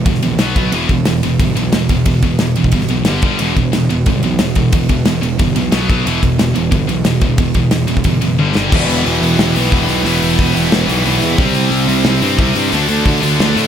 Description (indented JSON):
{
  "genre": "heavy metal",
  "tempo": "180 BPM",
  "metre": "4/4",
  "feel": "straight",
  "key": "E minor",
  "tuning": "A4 = 440 Hz",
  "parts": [
    { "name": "high-gain distorted guitar", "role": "riff", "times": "0.0-13.7 s", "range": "E2 to D4", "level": "-19 LUFS", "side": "left 11 dB", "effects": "distortion" },
    { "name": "scooped high-gain guitar", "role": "riff", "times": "0.0-13.7 s", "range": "E2 to D4", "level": "-18 LUFS", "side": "right 8 dB", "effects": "distortion" },
    { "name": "fuzz picked electric bass", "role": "bass", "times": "0.0-13.7 s", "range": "E1 to A2", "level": "-18 LUFS", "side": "equal", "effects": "overdrive" },
    { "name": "modern studio drum kit", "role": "drums", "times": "0.1-13.6 s", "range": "crash cymbal, hi-hat, kick drum, ride cymbal, snare drum, toms", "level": "-17 LUFS", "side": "left 1 dB", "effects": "none" },
    { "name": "pipe organ, foundations", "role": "sustained chords", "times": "8.7-13.7 s", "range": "D4 to G5", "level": "-26 LUFS", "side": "equal", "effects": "none" },
    { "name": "tight distorted guitar", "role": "riff", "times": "8.7-13.7 s", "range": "C3 to E4", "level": "-19 LUFS", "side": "equal", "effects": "distortion" }
  ],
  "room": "light reverb",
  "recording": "none",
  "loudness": "-12 LUFS",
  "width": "side -9 dB against mid",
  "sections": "0.0-8.7 A section; 8.7-13.7 B section",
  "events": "drum fill 8.4-8.7; half time 8.7-13.7",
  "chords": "0.4 B5; 0.7 Em; 3.1 G5; 3.4 Em; 5.7 B5; 6.1 Em; 8.4 G5; 8.7 Em; 11.4 C; 12.7 D"
}